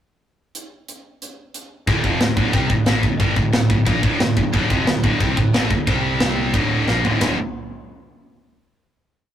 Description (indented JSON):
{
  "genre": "heavy metal",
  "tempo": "180 BPM",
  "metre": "4/4",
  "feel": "straight",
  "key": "D minor",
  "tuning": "A4 = 440 Hz",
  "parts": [
    { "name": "tight metal drum kit", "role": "drums", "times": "0.6-7.3 s", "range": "china cymbal, hi-hat, kick drum, ride cymbal, snare drum, toms", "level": "-20 LUFS", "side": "equal", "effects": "none" },
    { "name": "scooped high-gain guitar", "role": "riff", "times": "1.9-7.4 s", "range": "D2 to C4", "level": "-20 LUFS", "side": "equal", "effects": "distortion" },
    { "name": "fuzz picked electric bass", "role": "bass", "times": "1.9-7.4 s", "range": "D1 to C2", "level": "-24 LUFS", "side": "equal", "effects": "overdrive" }
  ],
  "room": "moderate booth ambience, RT60 0.2 s",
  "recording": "rough rehearsal-room recording, tube saturation",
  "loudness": "-16 LUFS",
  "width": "side -10 dB against mid",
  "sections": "0.5-1.9 pickup bar; 1.9-7.2 riff; 7.2-8.5 final chord",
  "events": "drum fill 6.9-7.2",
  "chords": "0.5 N.C.; 1.9 Dm; 5.9 C5; 6.5 Dm; 7.2 D5",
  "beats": "| 0.55 0.88 1.21 1.54 | 1.87 2.21 2.54 2.87 | 3.20 3.54 3.87 4.20 | 4.54 4.87 5.21 5.54 | 5.87 6.21 6.54 6.88 | 7.21"
}